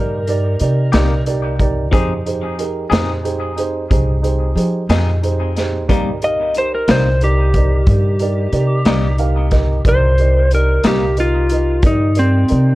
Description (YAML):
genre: slow blues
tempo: 61 BPM (dotted quarters)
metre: 12/8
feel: straight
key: C minor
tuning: A4 = 440 Hz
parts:
  - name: electric slide guitar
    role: melody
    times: 0.0-12.8 s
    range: C4 to Eb5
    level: -18 LUFS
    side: equal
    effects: dub echo
  - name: dark upright piano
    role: accompaniment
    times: 0.0-12.7 s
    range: Eb4 to F5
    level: -22 LUFS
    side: right 4 dB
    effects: none
  - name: upright bass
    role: bass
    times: 0.0-12.8 s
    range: C2 to F3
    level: -16 LUFS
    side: equal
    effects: none
  - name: raw garage drum kit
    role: drums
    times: 0.3-12.6 s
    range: hi-hat, kick drum, snare drum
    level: -19 LUFS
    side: equal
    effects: none
  - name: clean electric guitar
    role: accompaniment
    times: 0.9-11.0 s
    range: C3 to Ab4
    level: -24 LUFS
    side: left 4 dB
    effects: harmonic tremolo, dub echo
room: small room ambience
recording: echo-heavy mix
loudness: -13 LUFS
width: side -18 dB against mid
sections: 0.0-12.8 A section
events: none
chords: 0.0 Cm7; 1.9 Fm7; 5.9 Cm7